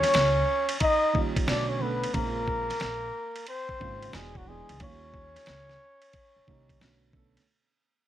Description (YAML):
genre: hip hop, jazz-hop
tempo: 90 BPM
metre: 4/4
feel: swing 65% on 16ths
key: unclear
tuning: A4 = 440 Hz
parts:
  - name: trumpet with bucket mute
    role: melody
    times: 0.0-7.1 s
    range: F#4 to Eb5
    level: -28 LUFS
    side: right 1 dB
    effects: none
  - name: clear trombone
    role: second line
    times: 0.0-7.1 s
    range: F#3 to Eb4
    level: -35 LUFS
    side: left 8 dB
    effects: none
  - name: dark baby grand piano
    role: accompaniment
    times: 0.0-7.4 s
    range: Db3 to A4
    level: -36 LUFS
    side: right 7 dB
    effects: none
  - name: upright bass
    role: bass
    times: 0.0-7.4 s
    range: E1 to Eb2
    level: -34 LUFS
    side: equal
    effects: none
  - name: dusty soul sampler-style drum kit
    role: drums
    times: 0.0-7.5 s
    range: hi-hat, kick drum, ride cymbal, snare drum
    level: -31 LUFS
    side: equal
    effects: none
room: light reverb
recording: vinyl crackle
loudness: -25 LUFS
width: side -12 dB against mid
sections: 0.0-7.5 A section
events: fade-out 0.0-7.5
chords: 0.0 Eb9; 1.5 Bm9; 2.1 Bbm9; 4.1 E9; 4.8 Eb9; 6.8 Bm9